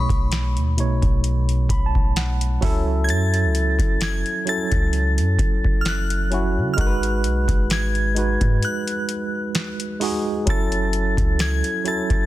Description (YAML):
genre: contemporary R&B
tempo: 65 BPM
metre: 4/4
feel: swing 54% on 16ths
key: F# dorian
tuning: A4 = 440 Hz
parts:
  - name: glassy synth bell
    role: melody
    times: 0.0-12.3 s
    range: B5 to A6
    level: -27 LUFS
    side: left 1 dB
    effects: chorus, ping-pong delay
  - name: tine electric piano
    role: accompaniment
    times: 0.0-12.3 s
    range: B2 to B5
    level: -24 LUFS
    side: right 2 dB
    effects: medium stereo tremolo
  - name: clean 808-style bass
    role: bass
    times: 0.0-12.3 s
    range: F#1 to C#3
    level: -22 LUFS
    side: equal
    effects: none
  - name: booming analog drum machine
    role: drums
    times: 0.1-12.3 s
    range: hi-hat, kick drum, snare drum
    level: -22 LUFS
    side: equal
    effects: none
room: little or no reverb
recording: dense, heavily limited modern master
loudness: -18 LUFS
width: side -15 dB against mid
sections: 0.0-10.5 A section; 10.5-12.3 A section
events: tine electric piano fill 1.2-3.1; break 8.6-10.5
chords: 0.0 B9; 2.6 F#m7; 6.8 G#m7; 10.5 F#m7